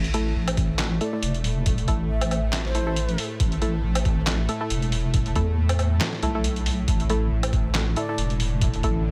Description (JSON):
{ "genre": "deep dubstep", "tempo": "138 BPM", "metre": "4/4", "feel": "swing 55% on 16ths, half-time", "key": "unclear", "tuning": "A4 = 440 Hz", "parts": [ { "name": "bowed-like drone", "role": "sustained chords", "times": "0.0-9.1 s", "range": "A2 to A3", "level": "-35 LUFS", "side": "equal", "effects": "built-in reverb" }, { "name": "deep soft wobble bass", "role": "bass", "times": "0.0-9.1 s", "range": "E1 to E2", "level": "-26 LUFS", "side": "equal", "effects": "chorus, tube saturation" }, { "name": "trip hop sampler-style drum kit", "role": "drums", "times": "0.0-8.9 s", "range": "handclaps, hi-hat, snare drum, woodblock", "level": "-32 LUFS", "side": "equal", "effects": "none" }, { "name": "filtered dub chord stab", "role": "stabs", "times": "0.1-9.0 s", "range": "A3 to A4", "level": "-33 LUFS", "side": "equal", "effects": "chorus, dub echo" }, { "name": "electronic kick drum", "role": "drums", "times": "0.6-8.9 s", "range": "none", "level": "-27 LUFS", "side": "equal", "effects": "none" }, { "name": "breathy low ney", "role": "melody", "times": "1.0-3.3, 8.0-8.3 s", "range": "C5 to E5", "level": "-38 LUFS", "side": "equal", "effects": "dub echo" } ], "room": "digital ambience", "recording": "none", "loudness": "-24 LUFS", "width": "mono", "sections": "0.0-9.1 A section", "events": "none", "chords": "0.0 A5", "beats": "0.36 0.79 1.23 | 1.66 2.10 2.53 2.97 | 3.40 3.84 4.27 4.71 | 5.14 5.58 6.01 6.45 | 6.88 7.32 7.75 8.18 | 8.62 9.05" }